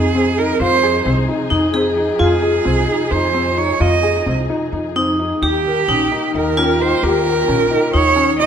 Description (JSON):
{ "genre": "contemporary instrumental, chamber music in an uneven meter", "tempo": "262 BPM (eighths)", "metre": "7/8", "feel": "straight", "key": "unclear", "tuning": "A4 = 441 Hz", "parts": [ { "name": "clear cello", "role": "melody", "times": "0.0-8.5 s", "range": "G4 to Eb5", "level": "-17 LUFS", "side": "right 5 dB", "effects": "none" }, { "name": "vibraphone with hard mallets", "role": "second line", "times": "0.0-8.5 s", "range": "C4 to Ab4", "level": "-20 LUFS", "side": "equal", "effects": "none" }, { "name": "warm studio string section", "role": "sustained chords", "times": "0.0-8.5 s", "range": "Eb3 to Ab4", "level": "-26 LUFS", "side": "left 5 dB", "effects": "none" }, { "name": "felt-muted upright piano", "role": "arpeggios", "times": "0.0-8.5 s", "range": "C4 to Bb4", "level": "-21 LUFS", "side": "left 4 dB", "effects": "none" }, { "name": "upright bass", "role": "bass", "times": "0.0-8.5 s", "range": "Bb1 to F2", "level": "-22 LUFS", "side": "equal", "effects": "none" } ], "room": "moderate concert hall reverb, RT60 2.0 s", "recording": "minimal, uncompressed stereo recording", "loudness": "-14 LUFS", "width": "side -8 dB against mid", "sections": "0.0-8.5 A section", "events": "none", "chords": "0.0 Fm7; 5.4 Eb", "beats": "0.14 0.37 | 0.60 0.83 1.06 1.28 1.51 1.74 1.97 | 2.20 2.42 2.65 2.88 3.11 3.34 3.57 | 3.80 4.03 4.26 4.49 4.72 4.96 5.19 | 5.42 5.65 5.88 6.12 6.35 6.58 6.80 | 7.03 7.26 7.49 7.72 7.94 8.17 8.40" }